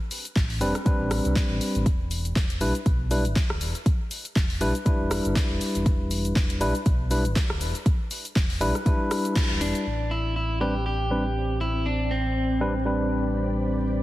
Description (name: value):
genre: deep house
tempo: 120 BPM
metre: 4/4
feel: swing 56% on 16ths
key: A minor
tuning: A4 = 440 Hz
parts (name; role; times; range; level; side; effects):
- deep house drum kit; drums; 0.1-9.8 s; handclaps, hi-hat, rim click, shaker; -32 LUFS; equal; low-pass filter on hats, small room ambience, low-pass filter on perc, low-pass filter on snare
- sub bass with octave; bass; 0.4-14.0 s; D1 to C2; -28 LUFS; equal; tube saturation, sidechain pumping
- electronic kick drum; drums; 0.4-9.5 s; none; -23 LUFS; equal; small room ambience
- barky tine electric piano; stabs; 0.6-14.0 s; G3 to B4; -27 LUFS; left 1 dB; sidechain pumping, low-pass filter, ping-pong delay
- electric guitar at the edge of break-up; melody; 9.6-12.8 s; C4 to G4; -29 LUFS; equal; vintage 12-bit sampler grit
- soft string machine; sustained chords; 10.2-14.0 s; C4 to B5; -33 LUFS; right 1 dB; ensemble chorus, sidechain pumping
room: light reverb, digital ambience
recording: heavily compressed radio sound, vinyl crackle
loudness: -22 LUFS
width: side -16 dB against mid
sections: 0.0-9.9 A section; 9.9-14.0 B section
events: band accent 9.4; filter sweep on tine electric piano 9.9-14.0; filter sweep on string machine 9.9-14.0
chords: 0.0 Am11; 1.9 Em7; 9.9 Am11